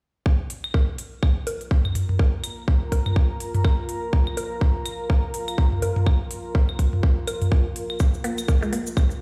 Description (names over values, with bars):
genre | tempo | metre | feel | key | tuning
minimal techno | 124 BPM | 4/4 | swing 58% on 16ths | unclear | A4 = 440 Hz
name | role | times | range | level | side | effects
electronic kick drum | drums | 0.3-9.1 s | none | -21 LUFS | equal | overdrive
deep dark ambient pad | texture | 1.4-9.2 s | F4 to Bb5 | -36 LUFS | equal | chorus, built-in reverb, sidechain pumping
electronic hi-hat | drums | 0.5-8.8 s | none | -40 LUFS | equal | overdrive
electronic claves, bongos and toms | percussion | 0.6-9.1 s | none | -29 LUFS | equal | overdrive, digital delay
cabasa | percussion | 8.0-9.2 s | none | -42 LUFS | equal | none
mallet-like synth pluck | riff | 8.2-8.7 s | Ab3 to Bb3 | -31 LUFS | equal | chorus, sidechain pumping, delay
room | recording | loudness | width
little or no reverb | played on a big sound system in a bare room, stone room reverb | -23 LUFS | mono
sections
0.3-9.2 A section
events
none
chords
0.3 Bb5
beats
| 0.26 0.74 1.23 1.71 | 2.19 2.68 3.16 3.65 | 4.13 4.61 5.10 5.58 | 6.07 6.55 7.03 7.52 | 8.00 8.48 8.97